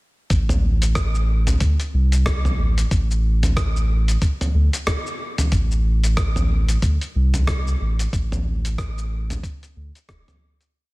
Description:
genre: organic downtempo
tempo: 92 BPM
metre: 4/4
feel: swing 59% on 16ths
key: A minor pentatonic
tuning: A4 = 437 Hz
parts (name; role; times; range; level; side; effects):
- warm sub bass; bass; 0.3-10.2 s; E1 to D2; -19 LUFS; equal; tube saturation, sidechain pumping
- dusty soul sampler-style drum kit; drums; 0.3-10.7 s; cabasa, hi-hat, rim click, toms; -25 LUFS; equal; studio reverb, soft clipping on snare
- electronic kick drum; drums; 0.3-10.2 s; none; -22 LUFS; equal; studio reverb
room: digital ambience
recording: dense, heavily limited modern master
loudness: -18 LUFS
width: side -22 dB against mid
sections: 0.3-10.7 groove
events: fade-out 7.3-10.7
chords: none

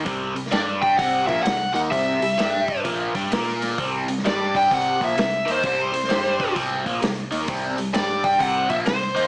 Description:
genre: blues rock power trio and southern rock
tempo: 129 BPM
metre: 4/4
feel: swing 64% on 8ths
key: unclear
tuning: A4 = 442 Hz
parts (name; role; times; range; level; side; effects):
- overdriven electric guitar; riff; 0.0-9.3 s; Bb2 to Bb4; -24 LUFS; equal; phaser
- overdriven picked electric bass; bass; 0.0-9.3 s; Bb1 to Bb2; -34 LUFS; equal; none
- vintage drum kit; drums; 0.1-9.2 s; hi-hat, kick drum, snare drum; -28 LUFS; equal; none
- bluesy overdriven lead guitar; melody; 0.5-9.3 s; C5 to G5; -21 LUFS; equal; distortion
room: moderate large studio reverb, RT60 0.8 s, studio ambience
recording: small speaker sound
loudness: -19 LUFS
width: side -26 dB against mid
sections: 0.0-9.3 A section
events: none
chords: 0.0 C5; 0.5 G5; 1.0 C; 2.4 G5; 2.8 Bb6; 3.3 Bb5; 3.8 C5; 4.2 G5; 4.7 C5; 6.1 G5; 6.6 C5; 7.9 G5; 8.4 C5

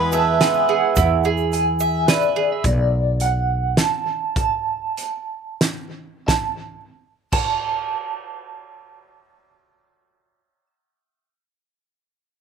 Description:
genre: indie folk with a building arrangement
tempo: 86-108 BPM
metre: 3/4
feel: straight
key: unclear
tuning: A4 = 440 Hz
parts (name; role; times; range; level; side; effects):
- electric guitar through a small old amp; melody; 0.0-10.7 s; D5 to B5; -22 LUFS; right 2 dB; tremolo, slapback echo
- warm fiddle; second line; 0.0-0.9 s; B4; -28 LUFS; left 7 dB; slapback echo
- picked swing-style acoustic guitar; accompaniment; 0.0-1.0 s; E3 to G#4; -26 LUFS; left 7 dB; slapback echo
- mandolin; arpeggios; 0.0-2.6 s; E4 to E5; -20 LUFS; right 11 dB; slapback echo
- upright bass; bass; 0.0-3.7 s; B1 to E2; -22 LUFS; equal; none
- egg shaker; percussion; 0.1-2.3 s; none; -33 LUFS; right 14 dB; none
- loose indie drum kit; drums; 0.4-7.5 s; crash cymbal, hi-hat, kick drum, snare drum; -23 LUFS; right 1 dB; none
room: little or no reverb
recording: none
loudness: -18 LUFS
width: side -6 dB against mid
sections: 0.0-6.3 A section; 6.3-10.5 B section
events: slowing down 2.6-6.3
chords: 0.0 E; 2.6 Bm7; 4.4 N.C.

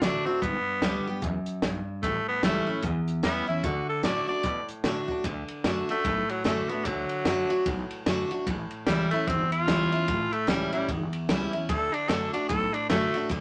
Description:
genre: rockabilly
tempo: 149 BPM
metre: 4/4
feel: swing 60% on 8ths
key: D major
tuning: A4 = 440 Hz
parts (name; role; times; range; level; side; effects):
- raspy tenor saxophone; melody; 0.0-13.3 s; F#3 to D5; -31 LUFS; equal; none
- picked steel-string acoustic guitar; accompaniment; 0.0-13.4 s; E2 to G4; -32 LUFS; equal; none
- upright bass; bass; 0.0-13.4 s; G1 to B2; -38 LUFS; equal; none
- compact cocktail drum kit; drums; 0.0-13.4 s; hi-hat, kick drum, ride cymbal, snare drum; -34 LUFS; equal; none
room: light reverb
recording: none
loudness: -28 LUFS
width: mono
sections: 0.0-5.2 A section; 5.2-13.4 B section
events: tenor saxophone solo 5.2-13.4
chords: 0.4 G; 2.0 A7; 3.6 D; 8.5 A7; 11.7 D

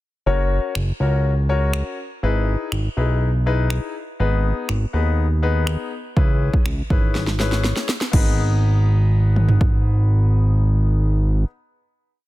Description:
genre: dance-pop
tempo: 122 BPM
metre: 4/4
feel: straight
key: G# minor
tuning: A4 = 441 Hz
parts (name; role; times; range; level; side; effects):
- clear grand piano; accompaniment; 0.3-11.5 s; B3 to C#5; -26 LUFS; left 6 dB; sidechain pumping
- fat analog bass; bass; 0.3-11.4 s; F#1 to D#2; -18 LUFS; equal; sidechain pumping
- deep house drum kit; drums; 0.8-9.7 s; crash cymbal, finger snaps, kick drum, snare drum, toms; -20 LUFS; equal; soft clipping on snare
room: little or no reverb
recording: dense, heavily limited modern master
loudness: -17 LUFS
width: side -17 dB against mid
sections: 0.3-8.1 verse; 8.1-12.1 final chord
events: drum fill 7.1-8.1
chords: 0.3 F#; 2.2 Emaj7/G#; 4.2 G#m; 6.2 C#m7; 8.1 G#m

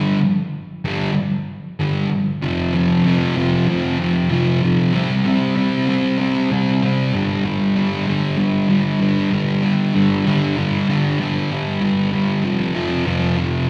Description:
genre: rock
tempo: 96 BPM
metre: 4/4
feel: straight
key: unclear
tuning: A4 = 440 Hz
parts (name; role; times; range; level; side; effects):
- thick fuzz guitar; solo; 0.0-13.7 s; F2 to C4; -18 LUFS; equal; distortion, slapback echo
room: moderate club reverb, RT60 0.7 s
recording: live gig heard through the venue's PA, recital hall reverb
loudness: -19 LUFS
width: mono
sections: 0.0-2.4 A section; 2.4-13.7 B section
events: none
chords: 0.0 G5; 2.4 F5; 4.9 C5; 7.1 G5; 12.5 F5

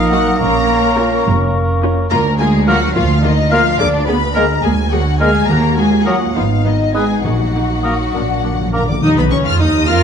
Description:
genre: quick classical-period movement for symphony orchestra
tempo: 70 BPM (dotted quarters)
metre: 6/8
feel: rubato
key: unclear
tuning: A4 = 440 Hz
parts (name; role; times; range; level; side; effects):
- rich studio violin section; melody; 0.0-10.0 s; Eb5 to F6; -21 LUFS; left 6 dB; none
- hollow concert flute; second line; 0.0-8.9 s; Db6 to F6; -22 LUFS; left 2 dB; none
- warm oboe; second line; 0.0-8.8 s; Bb4 to Cb5; -26 LUFS; equal; none
- mellow bassoon; accompaniment; 0.0-8.8 s; Gb3 to Bb3; -23 LUFS; right 2 dB; none
- mellow French horn section; sustained chords; 0.0-8.7 s; Bb3 to Ab4; -22 LUFS; left 3 dB; none
- rich studio double bass section; bass; 0.0-10.0 s; F1 to F2; -17 LUFS; right 2 dB; none
- warm studio cello section; bass; 0.0-10.0 s; Eb3 to Bb4; -20 LUFS; right 2 dB; none
- rich studio violin section; second line; 0.1-10.0 s; Eb4 to F5; -22 LUFS; left 2 dB; none
- warm studio viola section; accompaniment; 0.1-10.0 s; Bb3 to Ab4; -21 LUFS; equal; none
- timpani; percussion; 0.4-1.2, 5.5-9.8 s; Bb2 to Eb3; -21 LUFS; left 1 dB; none
room: moderate scoring stage reverb, RT60 1.6 s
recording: dark, warm production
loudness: -12 LUFS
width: side -7 dB against mid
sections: 0.0-9.0 A section; 9.0-10.0 B section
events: timpani fill 8.1-9.0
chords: 0.4 Bbm; 2.1 Bb/D; 3.8 Bb7/D; 5.5 Ebm; 6.4 Abm; 7.2 Ebm/Bb; 8.1 Bb; 9.0 Db9/Cb

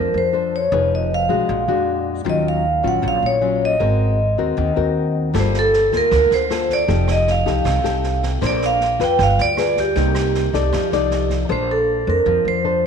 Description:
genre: bossa nova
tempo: 156 BPM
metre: 4/4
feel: straight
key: Bb major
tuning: A4 = 440 Hz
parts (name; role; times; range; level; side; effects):
- vibraphone with medium mallets; melody; 0.0-12.9 s; G4 to G5; -19 LUFS; right 2 dB; none
- nylon-string guitar; accompaniment; 0.0-12.9 s; Bb2 to D5; -22 LUFS; left 9 dB; none
- upright bass; bass; 0.0-12.9 s; F1 to F2; -22 LUFS; right 2 dB; none
- open jazz drum kit; drums; 5.3-11.3 s; kick drum, rim click, snare drum; -29 LUFS; right 7 dB; none
room: moderate echo chamber reverb, RT60 1.6 s, small room reverb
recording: 1960s-style stereo with parts hard left and right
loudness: -16 LUFS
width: side -6 dB against mid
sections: 0.0-11.5 A section; 11.5-12.9 A section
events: none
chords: 0.0 Bbmaj9; 0.7 Fm7b5; 1.5 Bb7b13; 2.3 Ebm9; 3.8 Ab9; 5.3 Gm9; 6.9 F9; 8.4 Bbmaj9; 9.2 G7b9; 10.0 Cm7; 10.7 F13; 11.5 Bbmaj9

